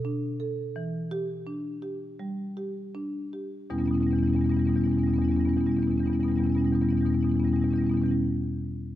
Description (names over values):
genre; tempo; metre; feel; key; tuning
classical, contemporary piece for solo marimba; 77-88 BPM; 4/4; rubato; E dorian; A4 = 440 Hz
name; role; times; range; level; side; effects
marimba with medium mallets; solo; 0.0-8.2 s; E2 to A4; -25 LUFS; equal; none
room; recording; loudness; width
moderate concert hall reverb, RT60 2.0 s; close, detailed microphones; -24 LUFS; side -13 dB against mid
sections
0.0-3.7 A section; 3.7-6.7 B section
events
slowing down 0.0-3.7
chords
0.0 Bm7; 0.8 Em7; 3.7 Em6